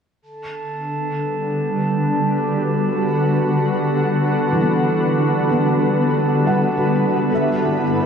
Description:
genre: ambient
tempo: 68 BPM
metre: 4/4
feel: straight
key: G major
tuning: A4 = 439 Hz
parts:
  - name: shimmering ambient pad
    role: sustained chords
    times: 0.8-8.1 s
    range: G2 to B4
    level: -18 LUFS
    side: equal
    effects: chorus, built-in reverb
  - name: glass harmonica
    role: texture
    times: 0.2-8.1 s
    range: A4 to A5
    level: -24 LUFS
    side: right 1 dB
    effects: none
  - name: felt-muted upright piano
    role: arpeggios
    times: 4.5-8.1 s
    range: E3 to F#5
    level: -23 LUFS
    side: equal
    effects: ensemble chorus, diffuse ambient delay
room: wet huge ambient reverb, RT60 8.4 s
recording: dreamy mix soaked in reverb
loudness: -16 LUFS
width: side -7 dB against mid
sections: 0.2-8.1 A section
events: filter sweep on ambient pad 0.2-8.1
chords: 0.2 Gmaj7; 7.3 Em/G

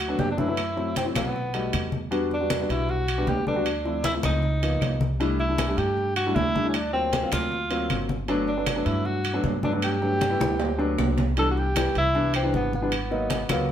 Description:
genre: Afro-Cuban jazz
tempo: 156 BPM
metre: 4/4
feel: straight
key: G major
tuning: A4 = 442 Hz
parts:
  - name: breathy tenor saxophone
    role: melody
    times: 0.0-13.7 s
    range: B3 to A4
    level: -27 LUFS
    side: equal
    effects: none
  - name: upright bass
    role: bass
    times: 0.0-13.7 s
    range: G1 to G2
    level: -29 LUFS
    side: equal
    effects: none
  - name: claves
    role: percussion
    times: 0.0-13.7 s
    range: none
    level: -39 LUFS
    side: left 3 dB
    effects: none
  - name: congas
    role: percussion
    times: 0.0-13.7 s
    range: none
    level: -31 LUFS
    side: left 2 dB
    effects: none
  - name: timbales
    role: percussion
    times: 0.0-13.7 s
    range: none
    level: -32 LUFS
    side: right 5 dB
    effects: none
  - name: warm grand piano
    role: accompaniment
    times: 0.1-13.7 s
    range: E3 to A4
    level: -28 LUFS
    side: left 1 dB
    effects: none
room: wet studio reverb, RT60 0.9 s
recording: heard from further back in the room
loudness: -22 LUFS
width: side -10 dB against mid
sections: 0.0-11.4 A section; 11.4-13.7 B section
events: drum fill 10.4-11.4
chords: 0.0 Gmaj9 (rootless); 0.6 F#m7b5; 1.3 B7b13; 2.1 Em7; 3.7 Dm7; 4.4 C#13; 5.2 C6; 6.7 D7alt; 8.3 Gmaj9; 11.4 Cmaj9; 12.9 Abm7

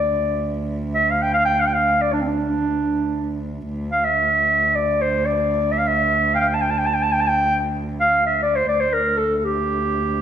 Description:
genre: Turkish makam ensemble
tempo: free time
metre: none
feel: none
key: D makam ussak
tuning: A4 = 440 Hz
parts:
  - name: warm clarinet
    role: melody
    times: 0.0-10.2 s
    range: C4 to A5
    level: -18 LUFS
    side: equal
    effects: none
  - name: dark cello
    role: drone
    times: 0.0-10.2 s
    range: D2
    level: -26 LUFS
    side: right 1 dB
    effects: none
room: wet recital hall reverb, RT60 1.3 s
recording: none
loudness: -18 LUFS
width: side -9 dB against mid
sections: 0.0-3.7 A section; 3.7-10.2 A section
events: none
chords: none

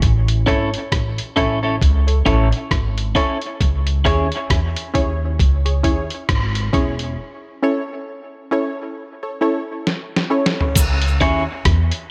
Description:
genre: dub reggae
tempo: 67 BPM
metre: 4/4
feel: swing 58% on 16ths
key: C# minor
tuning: A4 = 440 Hz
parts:
  - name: upright bass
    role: bass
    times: 0.0-11.9 s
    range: E1 to E2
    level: -21 LUFS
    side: equal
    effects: none
  - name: lo-fi sampler-style drum kit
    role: drums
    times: 0.0-12.1 s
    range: crash cymbal, hi-hat, kick drum, rim click, snare drum, toms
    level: -22 LUFS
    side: equal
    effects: none
  - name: clean electric guitar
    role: accompaniment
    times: 0.5-4.3, 11.2-11.4 s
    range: C#4 to C#5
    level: -24 LUFS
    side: equal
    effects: dub echo
  - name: filtered dub chord stab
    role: stabs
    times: 0.5-10.5 s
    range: C#4 to C#5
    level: -26 LUFS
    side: equal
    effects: chorus, dub echo
  - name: cabasa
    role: percussion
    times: 10.8-11.0 s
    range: none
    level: -27 LUFS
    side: equal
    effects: dub echo
room: light reverb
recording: none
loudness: -19 LUFS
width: mono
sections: 0.0-10.8 A section; 10.8-12.1 B section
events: break 3.6-10.8; drum fill 9.9-10.8; part muted 10.8-12.1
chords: 0.0 A; 3.6 C#m; 7.2 A; 10.8 C#m

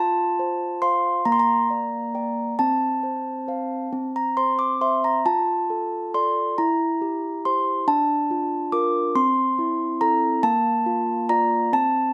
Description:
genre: classical, lullaby for handbells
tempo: 46 BPM (dotted quarters)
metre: 6/8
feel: rubato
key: F major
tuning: A4 = 440 Hz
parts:
  - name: handbells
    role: solo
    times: 0.0-12.1 s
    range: Bb3 to D6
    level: -22 LUFS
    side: equal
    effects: none
room: light reverb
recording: close, detailed microphones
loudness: -23 LUFS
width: mono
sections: 0.0-12.1 A section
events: none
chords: 0.0 F; 1.2 Gm/Bb; 2.6 F/C; 3.9 C; 5.2 Dm/F; 6.6 C/E; 7.9 Bb/D; 9.2 Am/C; 10.4 Bb

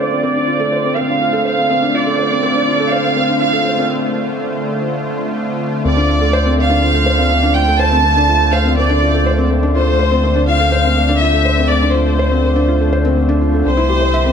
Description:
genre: piano and strings electronica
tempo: 123 BPM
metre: 4/4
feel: straight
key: D minor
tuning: A4 = 435 Hz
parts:
  - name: rich chamber violin section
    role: melody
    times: 0.0-14.3 s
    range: C5 to A5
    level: -16 LUFS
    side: right 1 dB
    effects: low-pass filter, tape echo
  - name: lush unison pad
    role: sustained chords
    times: 0.0-14.3 s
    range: D3 to C5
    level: -22 LUFS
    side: equal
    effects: chorus
  - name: felt-muted upright piano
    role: riff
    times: 0.0-14.3 s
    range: C4 to E5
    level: -18 LUFS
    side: left 1 dB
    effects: tape echo
  - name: warm sub bass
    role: bass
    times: 5.8-14.3 s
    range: C2 to D2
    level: -16 LUFS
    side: equal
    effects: none
room: moderate echo chamber reverb, RT60 1.8 s, small room ambience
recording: none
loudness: -12 LUFS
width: side -7 dB against mid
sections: 0.0-5.8 A section; 5.8-14.3 B section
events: build-up 0.0-5.8; break 3.9-5.8; drop 5.8-14.3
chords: 0.0 Dm7; 13.7 C

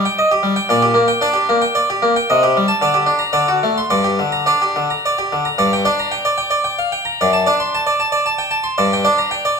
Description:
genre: classical, baroque-style suite movement for harpsichord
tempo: 112 BPM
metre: 3/4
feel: rubato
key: G minor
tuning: A4 = 440 Hz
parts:
  - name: harpsichord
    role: solo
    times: 0.0-9.6 s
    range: F#2 to C6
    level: -14 LUFS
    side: equal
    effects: none
room: wet stone room reverb, RT60 1.3 s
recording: minimal, uncompressed stereo recording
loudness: -14 LUFS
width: side -5 dB against mid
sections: 0.0-5.6 A section; 5.6-9.6 B section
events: none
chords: 0.0 Cm (rootless); 0.7 Gm/Bb; 2.3 Am7b5/C; 2.8 Gm/D; 3.3 D7; 3.9 Gm; 7.2 D7/F#; 8.8 Gm

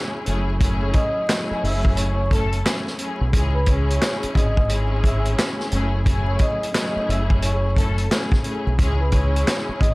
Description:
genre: hip hop, boom-bap hip-hop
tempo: 88 BPM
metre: 4/4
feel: swing 63% on 16ths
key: unclear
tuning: A4 = 439 Hz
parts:
  - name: warm studio string section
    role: accompaniment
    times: 0.0-9.9 s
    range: F#2 to A4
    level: -26 LUFS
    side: left 1 dB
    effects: cassette tape, high-pass filter, low-pass filter
  - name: deep dub fingered electric bass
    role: bass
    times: 0.3-9.9 s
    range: F#1 to C#2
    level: -21 LUFS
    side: equal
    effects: none
  - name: vintage drum kit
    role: drums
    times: 0.3-9.9 s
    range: handclaps, hi-hat, kick drum, snare drum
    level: -21 LUFS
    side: equal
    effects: none
  - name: vibraphone with soft mallets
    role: melody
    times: 0.8-9.9 s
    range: A4 to E6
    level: -27 LUFS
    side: equal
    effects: high-pass filter, low-pass filter
room: little or no reverb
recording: vinyl crackle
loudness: -18 LUFS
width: side -23 dB against mid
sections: 0.0-9.9 A section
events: none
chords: 0.3 F#m7; 3.3 C#m; 5.7 F#m7; 8.8 C#m

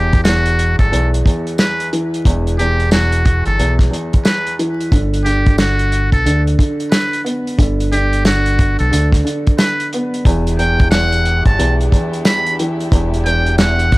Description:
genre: hip hop, boom-bap hip-hop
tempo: 90 BPM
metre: 4/4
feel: swing 62% on 16ths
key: E minor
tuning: A4 = 440 Hz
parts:
  - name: trumpet with metal mute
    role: melody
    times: 0.0-14.0 s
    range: F#4 to B5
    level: -19 LUFS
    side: equal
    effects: high-pass filter, low-pass filter
  - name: dark upright piano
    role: accompaniment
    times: 0.0-14.0 s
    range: E2 to B3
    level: -20 LUFS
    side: equal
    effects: high-pass filter, low-pass filter
  - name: deep dub fingered electric bass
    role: bass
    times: 0.0-14.0 s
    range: E1 to D2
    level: -16 LUFS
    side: equal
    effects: none
  - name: warm soul drum kit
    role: drums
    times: 0.1-14.0 s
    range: hi-hat, kick drum, snare drum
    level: -15 LUFS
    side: equal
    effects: none
  - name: tambourine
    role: percussion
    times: 0.2-13.8 s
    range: none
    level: -31 LUFS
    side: right 1 dB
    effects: none
  - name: warm studio string section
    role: sustained chords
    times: 10.3-14.0 s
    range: E3 to G4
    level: -27 LUFS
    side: left 1 dB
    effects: high-pass filter, low-pass filter
room: studio reverb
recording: dry, gritty hardware recording, vinyl crackle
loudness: -12 LUFS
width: side -21 dB against mid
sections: 0.0-10.3 A section; 10.3-14.0 B section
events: none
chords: 0.0 N.C.; 4.9 G; 10.3 Em7

